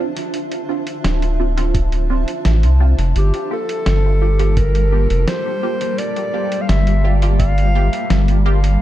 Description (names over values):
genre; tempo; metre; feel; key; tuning
ambient dub; 85 BPM; 4/4; straight; G dorian; A4 = 441 Hz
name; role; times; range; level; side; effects
granular cloud pad; sustained chords; 0.0-8.8 s; G3 to A5; -24 LUFS; equal; built-in reverb
filtered dub chord stab; stabs; 0.0-8.6 s; Bb3 to G4; -27 LUFS; right 3 dB; phaser, analog chorus, dub echo
lo-fi sampler-style drum kit; drums; 0.2-8.8 s; hi-hat, snare drum; -25 LUFS; equal; small room ambience, dub echo
round analog bass; bass; 1.0-8.8 s; D1 to C2; -14 LUFS; equal; none
electronic kick drum; drums; 1.7-7.5 s; none; -21 LUFS; equal; small room ambience
mellow clarinet; melody; 3.2-8.4 s; G4 to F5; -22 LUFS; left 1 dB; dub echo
room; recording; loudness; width
little or no reverb; echo-heavy mix; -14 LUFS; side -13 dB against mid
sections
0.0-8.8 A section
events
none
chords
0.0 Dm7; 3.2 Gm7